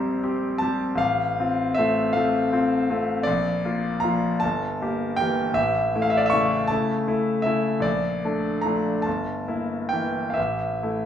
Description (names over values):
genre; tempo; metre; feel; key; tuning
classical, romantic nocturne for solo piano; 44-54 BPM (dotted quarters); 6/8; rubato; F major; A4 = 439 Hz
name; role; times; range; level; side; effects
bright concert grand piano; solo; 0.0-11.1 s; G1 to C#6; -21 LUFS; left 1 dB; none
room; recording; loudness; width
moderate recital hall reverb, RT60 1.4 s; small room ambience; -21 LUFS; side -9 dB against mid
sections
0.0-11.1 A section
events
none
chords
0.0 C7/Bb; 1.0 F/A; 3.3 Bb; 4.4 Edim/G; 5.6 A; 7.9 Bbmaj7; 9.1 Edim/G; 10.4 A5